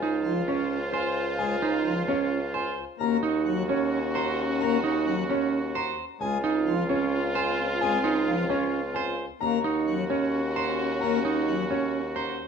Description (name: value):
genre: classical, minimalist pattern music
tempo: 262 BPM (eighths)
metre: 7/8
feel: straight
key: Eb dorian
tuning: A4 = 440 Hz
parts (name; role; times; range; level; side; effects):
- dark baby grand piano; melody; 0.0-12.5 s; Db5 to Bb5; -33 LUFS; left 5 dB; none
- bright oboe; second line; 0.0-12.4 s; F4 to Gb4; -34 LUFS; right 2 dB; none
- warm symphonic violin section; sustained chords; 0.0-12.3 s; C4 to C5; -34 LUFS; left 2 dB; none
- clean electric guitar; arpeggios; 0.0-12.5 s; Db4 to C5; -28 LUFS; right 6 dB; none
- warm bassoon; bass; 0.0-12.5 s; Db2 to Eb2; -31 LUFS; right 1 dB; none
- pipe organ, plenum; accompaniment; 0.2-11.6 s; F3 to Bb3; -30 LUFS; left 6 dB; none
room: moderate stone room reverb, RT60 1.1 s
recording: dark, warm production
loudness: -24 LUFS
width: side -6 dB against mid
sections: 0.0-12.5 A section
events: none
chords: 0.0 Dbmaj7; 3.0 Ebm7; 6.2 Dbmaj7; 9.4 Ebm7